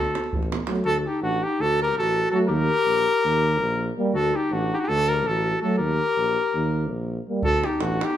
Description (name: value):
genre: balkan folk, Balkan brass band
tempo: 328 BPM (eighths)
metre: 9/8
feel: straight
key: unclear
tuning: A4 = 439 Hz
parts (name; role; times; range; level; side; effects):
- clear cornet; melody; 0.0-8.2 s; F#4 to Bb4; -23 LUFS; equal; none
- clear clarinet; second line; 0.0-8.2 s; D4 to G4; -28 LUFS; left 3 dB; none
- mellow tuba; bass; 0.0-8.0 s; A1 to Eb2; -27 LUFS; right 1 dB; none
- davul; percussion; 0.0-0.8, 7.4-8.1 s; none; -28 LUFS; right 2 dB; none
- mellow euphonium; accompaniment; 0.7-7.4 s; A3 to Bb3; -30 LUFS; left 2 dB; none
- warm trombone; accompaniment; 0.7-7.4 s; F#3 to G3; -28 LUFS; right 4 dB; none
room: moderate large studio reverb, RT60 1.2 s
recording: band playing live in one room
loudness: -20 LUFS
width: side -11 dB against mid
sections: 0.8-8.2 A section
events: none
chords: 0.0 D; 2.5 Eb; 4.1 D; 5.8 Eb; 7.4 D